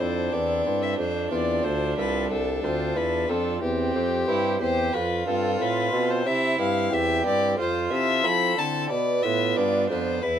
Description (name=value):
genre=classical, baroque-style sonata movement with continuo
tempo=91 BPM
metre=4/4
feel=straight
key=unclear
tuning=A4 = 440 Hz
part: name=warm violin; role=melody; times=0.0-10.4 s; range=G4 to B5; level=-26 LUFS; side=left 4 dB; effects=none
part: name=rich violin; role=second line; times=0.0-10.4 s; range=C4 to B4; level=-29 LUFS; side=right 5 dB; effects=none
part: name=pipe organ, cornet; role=accompaniment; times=0.0-10.4 s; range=C2 to C5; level=-29 LUFS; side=right 1 dB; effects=none
part: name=mellow bassoon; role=bass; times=0.0-10.4 s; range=C2 to F3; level=-27 LUFS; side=equal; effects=none
room=light reverb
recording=none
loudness=-22 LUFS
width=side -9 dB against mid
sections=0.0-10.4 A section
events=none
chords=0.0 Am; 1.0 F; 3.6 C/E; 4.9 F; 6.3 C; 7.6 Fmaj7; 8.9 Bdim